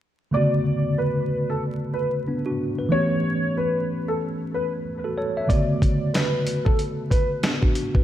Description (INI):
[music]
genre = hip hop, boom-bap hip-hop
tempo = 93 BPM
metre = 4/4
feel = swing 59% on 16ths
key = B minor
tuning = A4 = 440 Hz
[part]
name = dark upright piano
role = melody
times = 0.3-7.3 s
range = A4 to D5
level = -27 LUFS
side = equal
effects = analog chorus, tape echo
[part]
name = mellow tine electric piano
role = accompaniment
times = 0.3-8.0 s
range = C#3 to E5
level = -24 LUFS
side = equal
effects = medium stereo tremolo, cassette tape
[part]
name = dusty soul sampler-style drum kit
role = drums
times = 5.5-8.0 s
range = hi-hat, kick drum, snare drum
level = -21 LUFS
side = equal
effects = none
[sound]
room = moderate lush hall reverb, RT60 1.8 s, digital ambience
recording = dreamy mix soaked in reverb, vinyl crackle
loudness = -21 LUFS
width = side -12 dB against mid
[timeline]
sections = 0.3-8.0 A section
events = none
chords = 0.3 Bm7; 2.9 A7; 5.5 Bm7